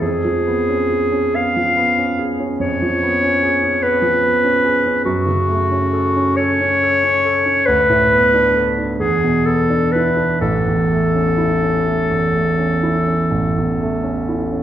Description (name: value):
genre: classical, romantic duo for clarinet and grand piano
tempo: 41-50 BPM (dotted quarters)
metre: 12/8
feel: rubato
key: A major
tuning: A4 = 440 Hz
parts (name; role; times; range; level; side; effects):
- clear clarinet; melody; 0.0-14.6 s; F#4 to E#5; -16 LUFS; left 1 dB; none
- clear concert grand piano; accompaniment; 0.0-14.6 s; A1 to A4; -18 LUFS; right 1 dB; none
room: wet recital hall reverb, RT60 1.4 s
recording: heard from further back in the room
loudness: -14 LUFS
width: side -11 dB against mid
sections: 0.0-14.6 A section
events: none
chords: 0.0 C#7/E#; 5.0 F#m; 7.7 Bm7/D; 9.0 E5; 10.4 A